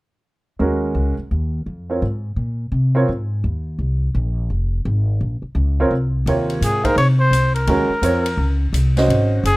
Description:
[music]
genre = modal jazz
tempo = 170 BPM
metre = 4/4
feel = swing 63% on 8ths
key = Eb dorian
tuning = A4 = 440 Hz
[part]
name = warm concert grand piano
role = accompaniment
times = 0.6-3.1, 5.8-9.4 s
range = C3 to Eb5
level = -19 LUFS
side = right 2 dB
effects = none
[part]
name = upright bass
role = bass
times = 0.6-9.6 s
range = F1 to C3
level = -18 LUFS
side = equal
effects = none
[part]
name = swinging big-band drum kit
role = drums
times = 6.3-9.6 s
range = hi-hat, kick drum, ride cymbal, snare drum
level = -30 LUFS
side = left 1 dB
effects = none
[part]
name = breathy trumpet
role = melody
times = 6.6-9.6 s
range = Ab4 to Db5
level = -20 LUFS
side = left 1 dB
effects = none
[sound]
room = studio reverb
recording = rough home demo mix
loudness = -17 LUFS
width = side -21 dB against mid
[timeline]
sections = 0.6-6.3 A section; 6.3-9.6 B section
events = none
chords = 0.6 Eb13sus4

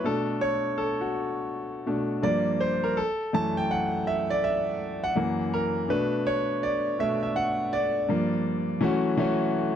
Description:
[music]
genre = R&B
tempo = 82 BPM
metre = 4/4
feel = swing 63% on 16ths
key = B minor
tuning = A4 = 438 Hz
[part]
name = clear concert grand piano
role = solo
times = 0.0-9.8 s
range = F#2 to A5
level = -24 LUFS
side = equal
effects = none
[sound]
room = light reverb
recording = dry, close 1970s-style studio recording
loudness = -24 LUFS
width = side -9 dB against mid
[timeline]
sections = 0.0-8.8 A section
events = grand piano solo 0.0-8.8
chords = 0.0 Bm7; 2.2 Gm7; 3.0 F#m7; 5.2 F#7; 5.9 Bm7; 8.1 Gm7; 8.8 F#m7

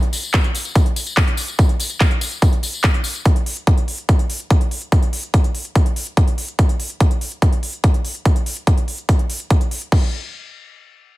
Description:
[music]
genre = trance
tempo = 144 BPM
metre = 4/4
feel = straight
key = none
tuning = none
[part]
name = big-room dance drum kit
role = drums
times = 0.0-10.0 s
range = crash cymbal, handclaps, hi-hat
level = -26 LUFS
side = equal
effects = none
[part]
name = tambourine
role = percussion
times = 0.1-3.2 s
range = none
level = -27 LUFS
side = left 4 dB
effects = none
[part]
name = electronic kick drum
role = drums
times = 0.3-10.0 s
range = none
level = -15 LUFS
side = equal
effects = none
[sound]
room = little or no reverb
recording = none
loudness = -16 LUFS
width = side -18 dB against mid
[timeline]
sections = 0.0-9.9 A section; 9.9-11.2 B section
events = none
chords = none

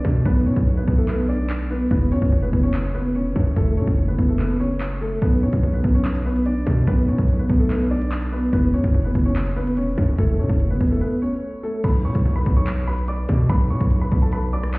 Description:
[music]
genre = hip hop, drill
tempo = 145 BPM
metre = 4/4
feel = half-time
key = unclear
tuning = A4 = 440 Hz
[part]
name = warm baby grand piano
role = melody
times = 0.0-14.8 s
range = A3 to D6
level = -24 LUFS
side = equal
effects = digital delay
[part]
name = distorted 808-style bass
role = bass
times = 0.0-14.8 s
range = E1 to C#3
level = -21 LUFS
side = equal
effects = distortion
[part]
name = drill drum kit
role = drums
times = 0.0-14.8 s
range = crash cymbal, handclaps, hi-hat, kick drum, rim click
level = -21 LUFS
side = equal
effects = none
[sound]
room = digital ambience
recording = heard muffled through a wall, stone room reverb, EQ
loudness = -18 LUFS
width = side -24 dB against mid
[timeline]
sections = 0.0-11.8 A section; 11.8-14.8 B section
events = break 0.0-5.2, 11.0-11.8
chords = 0.0 Bm; 1.9 F#m; 5.2 Bm; 8.5 F#m; 11.8 Bm

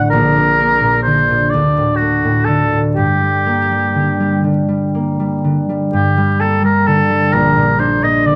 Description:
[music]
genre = classical, romantic duo for oboe and harp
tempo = 39-44 BPM (dotted quarters)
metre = 6/8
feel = rubato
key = G minor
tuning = A4 = 443 Hz
[part]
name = warm oboe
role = melody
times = 0.0-8.4 s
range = F#4 to Eb5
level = -17 LUFS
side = equal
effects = none
[part]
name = concert harp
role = accompaniment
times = 0.0-8.4 s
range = A1 to D4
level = -17 LUFS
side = equal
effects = none
[sound]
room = moderate recital hall reverb, RT60 1.5 s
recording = close, detailed microphones, vinyl crackle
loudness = -14 LUFS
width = mono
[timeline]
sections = 0.0-5.9 A section; 5.9-8.4 A section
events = none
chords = 0.1 Bbadd9; 1.5 D5; 3.0 Gm; 7.3 Gm/Bb

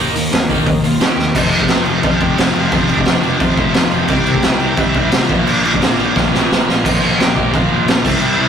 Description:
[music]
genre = punk rock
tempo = 175 BPM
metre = 4/4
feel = straight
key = unclear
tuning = A4 = 439 Hz
[part]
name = cranked stack guitar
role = melody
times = 0.0-8.5 s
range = Bb3 to A5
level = -24 LUFS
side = right 1 dB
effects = overdrive
[part]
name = distorted electric guitar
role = riff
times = 0.0-8.5 s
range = F2 to Eb4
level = -20 LUFS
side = right 7 dB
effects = overdrive
[part]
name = sludgy distorted guitar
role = riff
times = 0.0-8.5 s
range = F2 to Eb4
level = -19 LUFS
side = left 6 dB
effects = overdrive
[part]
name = fuzz picked electric bass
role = bass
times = 0.0-8.5 s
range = F1 to Eb3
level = -24 LUFS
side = equal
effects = overdrive
[part]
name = raw garage drum kit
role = drums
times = 0.2-8.3 s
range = crash cymbal, hi-hat, kick drum, snare drum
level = -14 LUFS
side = right 1 dB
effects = none
[sound]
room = light reverb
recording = rough rehearsal-room recording, tube saturation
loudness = -12 LUFS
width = side -8 dB against mid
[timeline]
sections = 0.0-1.4 A section; 1.4-6.8 B section; 6.8-8.5 C section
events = drum fill 1.2, 6.2-6.8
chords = 0.0 Eb; 1.4 F; 4.1 C; 5.3 Bb

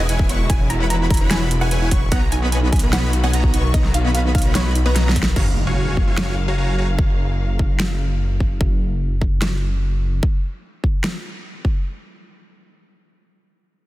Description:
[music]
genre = future bass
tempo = 148 BPM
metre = 4/4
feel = half-time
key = F# major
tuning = A4 = 440 Hz
[part]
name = wide unison pluck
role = melody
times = 0.0-5.3 s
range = B4 to A#5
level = -29 LUFS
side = equal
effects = sidechain pumping, tape echo
[part]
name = warm studio string section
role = sustained chords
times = 0.0-8.6 s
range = C#3 to E#5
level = -32 LUFS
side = left 1 dB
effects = sidechain pumping
[part]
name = airy dreamy lead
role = arpeggios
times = 0.0-5.3 s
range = G#5 to C#6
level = -32 LUFS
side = equal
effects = chorus, sidechain pumping, digital delay
[part]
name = soft round pluck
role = arpeggios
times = 0.0-5.3 s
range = D#4 to B5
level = -32 LUFS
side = right 4 dB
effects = none
[part]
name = dense compressed supersaw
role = riff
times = 0.0-6.9 s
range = B3 to C#6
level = -26 LUFS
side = equal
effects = vintage 12-bit sampler grit, sidechain pumping, digital delay
[part]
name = wide detuned saw bass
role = bass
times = 0.0-10.2 s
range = E1 to B1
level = -20 LUFS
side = equal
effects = chorus, sidechain pumping
[part]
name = big-room dance drum kit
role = drums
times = 0.1-11.1 s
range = crash cymbal, finger snaps, hi-hat, snare drum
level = -26 LUFS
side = equal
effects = overdrive
[part]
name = electronic kick drum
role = drums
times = 0.2-11.7 s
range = none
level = -18 LUFS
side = equal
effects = overdrive
[part]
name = impact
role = sound effects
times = 5.4-7.0 s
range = none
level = -29 LUFS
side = equal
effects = none
[sound]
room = little or no reverb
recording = dense, heavily limited modern master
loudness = -16 LUFS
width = side -16 dB against mid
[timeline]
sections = 0.0-5.4 A section; 5.4-11.8 B section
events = drop 0.0-5.4; drum fill 5.0-5.4; impact 5.4-7.0; filter sweep on detuned saw bass 5.4-10.2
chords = 0.0 E6; 2.1 Bmaj7; 5.4 F#maj7

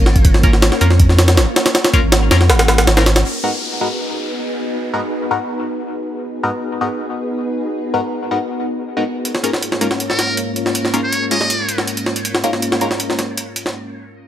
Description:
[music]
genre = drum and bass, jungle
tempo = 160 BPM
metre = 4/4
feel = straight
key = G# dorian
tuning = A4 = 439 Hz
[part]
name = soft string machine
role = sustained chords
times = 0.0-13.7 s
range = G#2 to C#5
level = -22 LUFS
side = equal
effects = ensemble chorus
[part]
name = saturated sub bass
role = bass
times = 0.0-3.2 s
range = G#1 to E#2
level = -13 LUFS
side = equal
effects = none
[part]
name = jungle sampler-style drum kit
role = drums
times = 0.1-3.2, 9.3-13.7 s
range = hi-hat, kick drum, snare drum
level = -15 LUFS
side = equal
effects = overdrive, studio reverb
[part]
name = band-passed chord stab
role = stabs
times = 0.4-12.9 s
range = G#2 to A#4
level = -22 LUFS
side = left 2 dB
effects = phaser, vintage 12-bit sampler grit, dub echo
[part]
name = downlifter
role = sound effects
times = 3.2-6.2 s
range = none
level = -27 LUFS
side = left 2 dB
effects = none
[part]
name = trumpet with metal mute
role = melody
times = 10.1-11.8 s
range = A#4 to D#5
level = -24 LUFS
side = equal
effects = dub echo
[sound]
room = light reverb, digital ambience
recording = none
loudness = -14 LUFS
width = side -11 dB against mid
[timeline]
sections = 0.0-3.2 A section; 3.2-14.3 B section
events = drop 0.0-3.2; break 13.7-14.3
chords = 0.0 A#m/G#; 3.2 G#m7; 9.2 A#m/G#

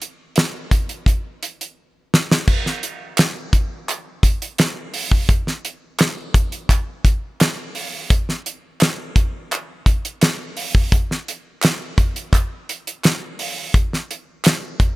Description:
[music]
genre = soul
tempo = 85 BPM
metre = 4/4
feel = straight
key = none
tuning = none
[part]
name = damped 70s drum kit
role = drums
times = 0.0-15.0 s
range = crash cymbal, hi-hat, kick drum, snare drum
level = -17 LUFS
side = equal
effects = none
[part]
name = group handclap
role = percussion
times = 3.2-14.6 s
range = none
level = -28 LUFS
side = right 1 dB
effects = none
[sound]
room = little or no reverb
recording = none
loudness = -18 LUFS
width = side -19 dB against mid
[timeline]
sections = 0.0-2.5 A section; 2.5-15.0 B section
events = drum fill 1.8-2.5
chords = none

